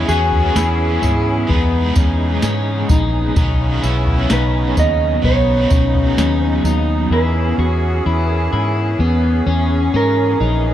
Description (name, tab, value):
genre	dream pop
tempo	64 BPM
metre	4/4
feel	straight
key	unclear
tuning	A4 = 439 Hz
part	mellow electric guitar	melody	0.0-10.7 s	E4 to D#5	-21 LUFS	right 3 dB	tape echo
part	cranked stack guitar	accompaniment	0.0-7.6 s	B2 to G#4	-24 LUFS	right 2 dB	overdrive, tremolo, lush chorus
part	musette accordion	sustained chords	0.0-10.7 s	C#3 to G#4	-24 LUFS	right 2 dB	none
part	electric guitar at the edge of break-up	arpeggios	0.0-10.7 s	B3 to F#4	-20 LUFS	left 4 dB	lush chorus, tape echo
part	vintage muted fingered electric bass	bass	0.0-10.7 s	A#1 to G#2	-18 LUFS	equal	none
part	soft vintage rhythm box	drums	0.1-6.9 s	kick drum, snare drum, tambourine, toms	-18 LUFS	equal	none
room	light reverb, digital ambience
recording	dark, warm production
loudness	-14 LUFS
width	side -11 dB against mid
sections	0.0-10.7 A section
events	none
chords	0.0 E6; 3.4 Badd9; 7.1 E6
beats	0.56 1.50 2.43 | 3.37 4.31 5.25 6.18 | 7.12 8.06 9.00 9.93